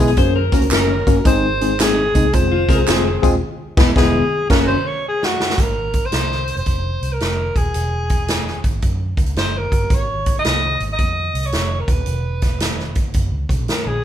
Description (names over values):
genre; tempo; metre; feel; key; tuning
uptempo 1960s-style soul; 111 BPM; 4/4; swing 66% on 8ths; Ab mixolydian; A4 = 442 Hz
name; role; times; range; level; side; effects
breathy alto saxophone; melody; 0.0-14.0 s; Gb4 to Eb5; -22 LUFS; equal; none
tine electric piano; accompaniment; 0.0-4.7 s; Ab3 to Bb4; -19 LUFS; left 3 dB; overdrive, fast stereo tremolo
vintage muted fingered electric bass; bass; 0.0-14.0 s; Eb1 to Gb2; -22 LUFS; right 1 dB; none
electric guitar at the edge of break-up; riff; 0.1-3.4 s; F4 to C5; -23 LUFS; left 7 dB; spring reverb
swinging big-band drum kit; drums; 0.1-13.9 s; crash cymbal, hi-hat, kick drum, snare drum; -19 LUFS; equal; none
tambourine and handclaps; percussion; 0.2-3.3 s; none; -29 LUFS; right 3 dB; none
clear horn section; second line; 0.5-4.7 s; Db3 to Bb4; -27 LUFS; right 2 dB; none
room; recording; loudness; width
light reverb; band playing live in one room; -15 LUFS; side -10 dB against mid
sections
0.0-5.6 A section; 5.6-14.0 B section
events
alto saxophone solo 0.0-5.6; band accent 3.4-5.6; drum fill 4.5-5.6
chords
0.2 Gb; 1.3 Ab; 2.3 Fm; 3.4 E; 4.5 Gb; 5.6 Ab; 6.7 F5; 7.7 E; 8.8 Gb5; 9.9 Ab; 11.0 F5; 12.1 E; 13.1 Gb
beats
0.17 0.72 | 1.26 1.80 2.34 2.88 | 3.42 3.96 4.50 5.04 | 5.58 6.12 6.66 7.20 | 7.74 8.28 8.82 9.36 | 9.90 10.44 10.98 11.52 | 12.06 12.60 13.14 13.68